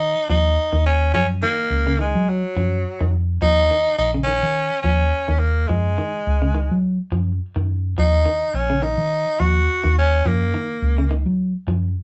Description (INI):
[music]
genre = afrobeat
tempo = 105 BPM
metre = 4/4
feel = swing 54% on 16ths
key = Eb minor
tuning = A4 = 440 Hz
[part]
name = raspy tenor saxophone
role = melody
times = 0.0-11.1 s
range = Gb3 to Gb4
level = -23 LUFS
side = equal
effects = none
[part]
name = hollow-body short-scale fingered electric bass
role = bass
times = 0.0-11.9 s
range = Bb1 to Gb3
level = -22 LUFS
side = equal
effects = none
[part]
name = electric guitar at the edge of break-up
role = arpeggios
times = 0.3-11.9 s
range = Db3 to F3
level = -29 LUFS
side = equal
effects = none
[sound]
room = moderate studio reverb, RT60 0.5 s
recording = band playing live in one room, nothing above 8.0 kHz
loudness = -20 LUFS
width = mono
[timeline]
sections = 0.0-12.0 A section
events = none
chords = 0.0 Eb5; 1.1 Gbmaj7; 3.4 Eb5; 5.7 Gbsus2; 8.0 Ebm7; 10.2 Gbmaj7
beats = 0.01 0.57 | 1.14 1.71 2.28 2.85 | 3.42 3.99 4.55 5.12 | 5.69 6.26 6.83 7.40 | 7.97 8.54 9.11 9.68 | 10.25 10.82 11.39